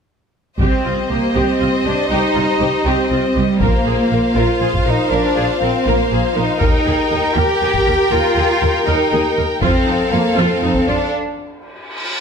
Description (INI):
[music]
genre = cinematic, epic orchestral film score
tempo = 80 BPM (dotted quarters)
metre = 6/8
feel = straight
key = C minor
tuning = A4 = 440 Hz
[part]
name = clear symphonic violin section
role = melody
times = 0.6-11.1 s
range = Eb5 to G5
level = -24 LUFS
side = left 5 dB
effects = none
[part]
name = rich symphonic violin section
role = second line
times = 0.6-11.1 s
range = A4 to C5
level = -23 LUFS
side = left 2 dB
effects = none
[part]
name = rich symphonic viola section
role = accompaniment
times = 0.6-11.0 s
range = Eb4 to Bb4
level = -23 LUFS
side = right 1 dB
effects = none
[part]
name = warm French horn section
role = sustained chords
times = 0.6-11.1 s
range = F4 to Eb5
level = -23 LUFS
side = left 3 dB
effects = none
[part]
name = rich symphonic cello section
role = bass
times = 0.6-11.1 s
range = G3 to G4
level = -18 LUFS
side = right 1 dB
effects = none
[part]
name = rich symphonic double bass section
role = bass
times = 0.6-11.0 s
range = Bb1 to F2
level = -21 LUFS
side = right 3 dB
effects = none
[part]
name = taiko ensemble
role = drums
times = 0.6-11.0 s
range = none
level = -20 LUFS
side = left 1 dB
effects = none
[part]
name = cymbal swell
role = sound effects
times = 11.7-12.2 s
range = none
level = -24 LUFS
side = equal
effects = none
[sound]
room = moderate recital hall reverb, RT60 1.6 s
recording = none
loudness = -14 LUFS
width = side -6 dB against mid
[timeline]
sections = 0.6-12.2 A section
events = break 11.1-12.2; cymbal swell 11.7-12.2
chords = 0.6 Cm; 3.6 Bbsus2; 6.6 Eb; 9.6 F; 11.1 N.C.